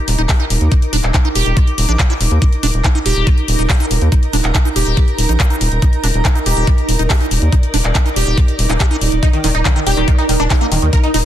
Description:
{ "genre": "psychedelic trance", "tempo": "141 BPM", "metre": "4/4", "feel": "straight", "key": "Eb major", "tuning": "A4 = 440 Hz", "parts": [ { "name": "granular cloud pad", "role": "texture", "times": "0.0-11.2 s", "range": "Eb4 to D6", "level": "-22 LUFS", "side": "right 2 dB", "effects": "built-in reverb, sidechain pumping" }, { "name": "round analog bass", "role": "bass", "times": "0.1-11.2 s", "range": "Eb1 to Eb2", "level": "-15 LUFS", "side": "equal", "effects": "none" }, { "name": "drum and bass drum kit", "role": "drums", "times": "0.1-11.2 s", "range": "handclaps, hi-hat", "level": "-20 LUFS", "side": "left 1 dB", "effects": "none" }, { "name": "liquid acid bass", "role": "riff", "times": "0.2-11.2 s", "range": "D4 to G4", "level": "-23 LUFS", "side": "moving between left 3 dB and right 5 dB", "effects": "phaser, auto-pan, sidechain pumping, dub echo" }, { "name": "electronic kick drum", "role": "drums", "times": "0.3-11.0 s", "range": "none", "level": "-13 LUFS", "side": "equal", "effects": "none" }, { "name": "supersaw stab", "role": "melody", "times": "9.2-11.2 s", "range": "Eb3 to Bb4", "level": "-19 LUFS", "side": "equal", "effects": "phaser, sidechain pumping, digital delay" }, { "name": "bubbling stepped-filter texture", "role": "sustained chords", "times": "9.8-11.2 s", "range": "Eb4", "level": "-24 LUFS", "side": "right 2 dB", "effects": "chorus, built-in reverb, sidechain pumping" } ], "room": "digital ambience", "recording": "dense, heavily limited modern master", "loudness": "-12 LUFS", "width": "side -11 dB against mid", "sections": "0.0-11.2 A section", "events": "none", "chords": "0.0 Eb5" }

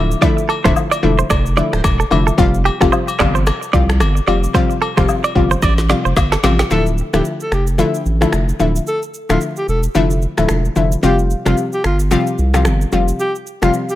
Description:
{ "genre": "afrobeats", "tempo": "111 BPM", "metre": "4/4", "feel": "swing 58% on 16ths", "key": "D minor", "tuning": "A4 = 441 Hz", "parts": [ { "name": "analog pluck", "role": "accompaniment", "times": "0.0-13.8 s", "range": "C3 to F4", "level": "-17 LUFS", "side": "left 3 dB", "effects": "chorus" }, { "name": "direct-recorded clean electric guitar", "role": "riff", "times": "0.0-6.7 s", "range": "G4 to D5", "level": "-21 LUFS", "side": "right 6 dB", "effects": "digital delay" }, { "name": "saturated sub bass", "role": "bass", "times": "0.0-13.7 s", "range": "D1 to C2", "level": "-16 LUFS", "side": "equal", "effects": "none" }, { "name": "deep house drum kit", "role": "drums", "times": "0.1-14.0 s", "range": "finger snaps, handclaps, kick drum, rim click, shaker, snare drum", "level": "-20 LUFS", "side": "equal", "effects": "none" }, { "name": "agogo bells and woodblock", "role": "percussion", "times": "0.5-6.6 s", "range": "none", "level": "-24 LUFS", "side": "left 7 dB", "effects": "none" }, { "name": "breathy alto saxophone", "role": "melody", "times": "6.7-14.0 s", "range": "F4 to A4", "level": "-22 LUFS", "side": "equal", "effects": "digital delay" } ], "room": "digital ambience", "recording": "none", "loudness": "-13 LUFS", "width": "side -14 dB against mid", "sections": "0.0-6.7 A section; 6.7-14.0 B section", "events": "drum fill 5.6-6.7", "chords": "0.0 Dmadd9; 2.4 Fsus2; 6.7 Dmadd9; 11.0 Fsus2" }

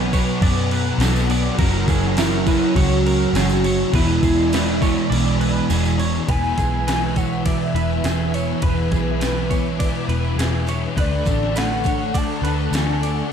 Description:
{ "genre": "rock, shoegaze and dream pop", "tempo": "102 BPM", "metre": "4/4", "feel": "straight", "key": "E mixolydian", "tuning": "A4 = 440 Hz", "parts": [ { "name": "string machine, violas", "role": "sustained chords", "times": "0.0-13.3 s", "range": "D4 to E6", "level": "-31 LUFS", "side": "equal", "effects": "ensemble chorus" }, { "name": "direct-recorded clean electric guitar", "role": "arpeggios", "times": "0.0-13.3 s", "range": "G#4 to D5", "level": "-31 LUFS", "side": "right 8 dB", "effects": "analog chorus, slapback echo" }, { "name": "crunchy overdriven guitar", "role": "riff", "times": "0.0-6.3 s", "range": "E2 to B3", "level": "-27 LUFS", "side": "equal", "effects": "none" }, { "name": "overdriven semi-hollow guitar", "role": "riff", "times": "0.0-13.3 s", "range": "B2 to D5", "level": "-25 LUFS", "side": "right 12 dB", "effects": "reverse reverb" }, { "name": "thick fuzz guitar", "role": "riff", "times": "0.0-13.3 s", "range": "E2 to D4", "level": "-25 LUFS", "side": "left 11 dB", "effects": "distortion, ensemble chorus" }, { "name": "vintage muted picked electric bass", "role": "bass", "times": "0.0-13.2 s", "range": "E1 to F#2", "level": "-22 LUFS", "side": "equal", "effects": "none" }, { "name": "gated 80s digital drum machine", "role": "drums", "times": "0.1-13.2 s", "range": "crash cymbal, kick drum, ride cymbal, snare drum", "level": "-24 LUFS", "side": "equal", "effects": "gated reverb, gated reverb snare, overdrive" }, { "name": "tambourine", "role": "percussion", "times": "0.1-13.3 s", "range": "none", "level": "-39 LUFS", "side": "right 8 dB", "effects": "none" }, { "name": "warm velvety synth lead", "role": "melody", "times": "2.2-13.3 s", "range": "E4 to A5", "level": "-24 LUFS", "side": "left 1 dB", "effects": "chorus, slapback echo" } ], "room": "light reverb", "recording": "dark, warm production", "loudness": "-17 LUFS", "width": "side -7 dB against mid", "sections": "0.0-6.3 A section; 6.3-13.3 B section", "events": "kick and snare drop out 5.1-6.3", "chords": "0.0 Bm7; 1.6 F#7; 3.9 E7; 11.0 Dmaj7" }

